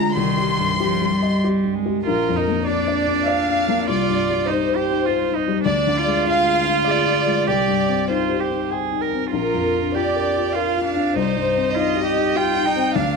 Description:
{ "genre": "neoclassical piano and strings", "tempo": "99 BPM", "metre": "3/4", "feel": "rubato", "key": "C minor", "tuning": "A4 = 438 Hz", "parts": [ { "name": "warm chamber violin section", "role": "melody", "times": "0.0-13.2 s", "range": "Bb4 to C6", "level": "-22 LUFS", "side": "left 1 dB", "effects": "none" }, { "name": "rich cello", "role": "second line", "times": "0.0-13.2 s", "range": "Eb3 to Bb4", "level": "-22 LUFS", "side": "right 15 dB", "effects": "none" }, { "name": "dark upright piano", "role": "accompaniment", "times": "0.0-13.2 s", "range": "Bb1 to G5", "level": "-22 LUFS", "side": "left 9 dB", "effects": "none" } ], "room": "moderate echo chamber reverb, RT60 1.7 s, small room ambience", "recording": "1960s-style stereo with parts hard left and right", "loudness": "-17 LUFS", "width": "side -4 dB against mid", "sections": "0.0-2.0 A section; 2.0-13.2 B section", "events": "none", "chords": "0.1 Cm; 2.0 Bb; 3.9 Cm; 5.7 Ddim; 7.5 Cm; 9.3 Bb; 11.1 Cm", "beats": "| 0.15 0.79 1.42 | 2.04 2.65 3.26 | 3.86 4.46 5.06 | 5.66 6.25 6.86 | 7.47 8.09 8.71 | 9.33 9.94 10.54 | 11.15 11.75 12.35 | 12.94" }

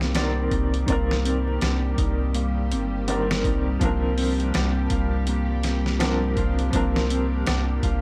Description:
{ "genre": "trip hop", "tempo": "82 BPM", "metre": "4/4", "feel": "swing 60% on 16ths", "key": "C minor", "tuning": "A4 = 440 Hz", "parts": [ { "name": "felt-muted upright piano", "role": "accompaniment", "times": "0.0-8.0 s", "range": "Eb3 to D5", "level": "-30 LUFS", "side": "equal", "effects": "tremolo, tape echo" }, { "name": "string machine, cellos", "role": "sustained chords", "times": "0.0-8.0 s", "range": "G3 to G4", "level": "-35 LUFS", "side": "equal", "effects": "ensemble chorus" }, { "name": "Celtic harp", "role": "arpeggios", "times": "0.0-8.0 s", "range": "Bb3 to F4", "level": "-32 LUFS", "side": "equal", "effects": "vintage 12-bit sampler grit, tape echo" }, { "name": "soft dub sub bass", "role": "bass", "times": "0.0-8.0 s", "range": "G1 to C2", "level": "-27 LUFS", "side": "equal", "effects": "none" }, { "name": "dusty soul sampler-style drum kit", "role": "drums", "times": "0.0-8.0 s", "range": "hi-hat, kick drum, snare drum", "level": "-29 LUFS", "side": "equal", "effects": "none" }, { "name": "tabla", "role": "percussion", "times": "0.2-7.6 s", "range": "none", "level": "-40 LUFS", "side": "equal", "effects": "none" } ], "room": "small room ambience", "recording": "vinyl crackle", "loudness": "-23 LUFS", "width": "mono", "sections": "0.0-8.0 A section", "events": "none", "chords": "0.0 Cm9; 3.8 Bbadd9/C", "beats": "0.15 | 0.89 1.62 2.35 3.08 | 3.81 4.54 5.28 6.01 | 6.74 7.47" }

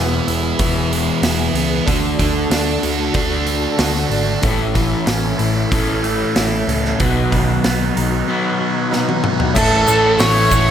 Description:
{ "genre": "classic rock", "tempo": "94 BPM", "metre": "4/4", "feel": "straight", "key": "unclear", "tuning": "A4 = 440 Hz", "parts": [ { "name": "picked plugged-in twelve-string acoustic guitar", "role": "accompaniment", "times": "0.0-10.7 s", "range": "E2 to A4", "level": "-27 LUFS", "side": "right 6 dB", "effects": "none" }, { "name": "tonewheel organ", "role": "sustained chords", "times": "0.0-10.7 s", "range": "B3 to B4", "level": "-28 LUFS", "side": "equal", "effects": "slow rotary speaker, overdrive, chorus vibrato" }, { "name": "biting overdriven guitar", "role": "riff", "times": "0.0-10.7 s", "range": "A2 to F#4", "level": "-21 LUFS", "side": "right 6 dB", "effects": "phaser" }, { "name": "overdriven semi-hollow guitar", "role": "riff", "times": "0.0-10.7 s", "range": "E2 to D4", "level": "-21 LUFS", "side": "left 8 dB", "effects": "none" }, { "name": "hollow-body short-scale picked electric bass", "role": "bass", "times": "0.0-10.7 s", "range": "E1 to D2", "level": "-22 LUFS", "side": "equal", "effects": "none" }, { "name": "big rock drum kit", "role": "drums", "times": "0.3-10.7 s", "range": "crash cymbal, hi-hat, kick drum, snare drum, toms", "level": "-21 LUFS", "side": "equal", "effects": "none" }, { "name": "clear baby grand piano", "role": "accompaniment", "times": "9.5-10.7 s", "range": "A3 to A4", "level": "-25 LUFS", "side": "left 3 dB", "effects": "none" }, { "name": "smooth overdriven lead guitar", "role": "melody", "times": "9.6-10.7 s", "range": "A4 to C#5", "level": "-14 LUFS", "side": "equal", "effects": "none" }, { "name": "egg shaker", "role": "percussion", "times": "9.6-10.7 s", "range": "none", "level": "-28 LUFS", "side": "left 6 dB", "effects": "none" } ], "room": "light reverb", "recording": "none", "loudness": "-14 LUFS", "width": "side -9 dB against mid", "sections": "0.0-9.6 A section; 9.6-10.7 B section", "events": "drum fill 8.9-9.6", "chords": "0.0 E; 1.9 D; 4.4 A; 7.0 B; 9.6 A", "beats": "0.59 1.23 | 1.87 2.51 3.15 3.79 | 4.43 5.07 5.71 6.35 | 6.99 7.63 8.27 8.91 | 9.55 10.19" }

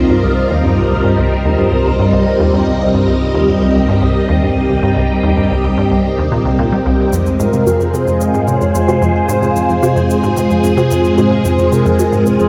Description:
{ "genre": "ambient, sequencer-driven space music", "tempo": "111 BPM", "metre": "4/4", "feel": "straight", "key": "C minor", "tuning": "A4 = 440 Hz", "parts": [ { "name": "string machine, full ensemble", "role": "sustained chords", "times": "0.0-12.5 s", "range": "G3 to Eb5", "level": "-16 LUFS", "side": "equal", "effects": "phaser, ensemble chorus" }, { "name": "resonant blip pluck", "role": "riff", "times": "0.0-12.5 s", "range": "C2 to G3", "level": "-17 LUFS", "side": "equal", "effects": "chorus, analog delay" }, { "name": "cabasa and congas", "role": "percussion", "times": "7.1-12.5 s", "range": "none", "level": "-26 LUFS", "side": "equal", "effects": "analog delay" }, { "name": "mellow horn-like synth lead", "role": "melody", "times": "7.4-12.5 s", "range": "Bb4 to F5", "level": "-22 LUFS", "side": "equal", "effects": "ensemble chorus, analog delay" } ], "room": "moderate plate reverb, RT60 3.3 s", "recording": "dreamy mix soaked in reverb", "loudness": "-13 LUFS", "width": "mono", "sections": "0.0-12.5 A section", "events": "none", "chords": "0.0 Cm7; 7.1 Fm", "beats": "0.10 | 0.64 1.19 1.73 2.27 | 2.81 3.35 3.89 4.43 | 4.97 5.51 6.05 6.59 | 7.13 7.67 8.21 8.75 | 9.29 9.83 10.37 10.91 | 11.46 12.00" }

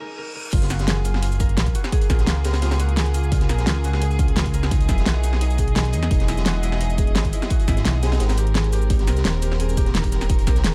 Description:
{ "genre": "liquid drum and bass", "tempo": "172 BPM", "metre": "4/4", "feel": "straight", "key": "F# major", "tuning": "A4 = 443 Hz", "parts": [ { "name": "concert harp", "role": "arpeggios", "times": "0.0-10.7 s", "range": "D#4 to A#4", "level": "-34 LUFS", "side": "equal", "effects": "dub echo" }, { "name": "reverse cymbal", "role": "sound effects", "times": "0.0-0.5 s", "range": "none", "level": "-39 LUFS", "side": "equal", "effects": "none" }, { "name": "bright symphonic string section", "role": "sustained chords", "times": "0.5-10.7 s", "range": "F#3 to D#5", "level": "-34 LUFS", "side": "equal", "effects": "sidechain pumping" }, { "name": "dark detuned saw bass", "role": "bass", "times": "0.5-10.7 s", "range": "D#1 to E2", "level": "-23 LUFS", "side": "equal", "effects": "tube saturation" }, { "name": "crunchy breakbeat drum kit", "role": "drums", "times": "0.5-10.7 s", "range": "hi-hat, snare drum", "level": "-35 LUFS", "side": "equal", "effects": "high-pass filter on hats, high-pass filter on snare, high-pass filter on room" }, { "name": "electronic kick drum", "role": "drums", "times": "0.5-10.5 s", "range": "none", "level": "-23 LUFS", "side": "equal", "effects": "none" }, { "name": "pop drum kit", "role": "drums", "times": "0.5-10.7 s", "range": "crash cymbal, hi-hat, shaker, snare drum", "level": "-28 LUFS", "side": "equal", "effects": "none" } ], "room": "small room ambience", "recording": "none", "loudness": "-20 LUFS", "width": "mono", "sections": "0.5-10.7 A section", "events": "break 0.0-0.5; reverse cymbal 0.0-0.5; drop 0.5-10.7", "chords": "0.0 G#sus2; 0.5 F#maj9; 4.7 Emaj9; 8.2 G#maj9", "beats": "0.18 | 0.53 0.88 1.23 1.57 | 1.92 2.27 2.62 2.97 | 3.32 3.67 4.02 4.37 | 4.71 5.06 5.41 5.76 | 6.11 6.46 6.81 7.16 | 7.50 7.85 8.20 8.55 | 8.90 9.25 9.60 9.95 | 10.30 10.64" }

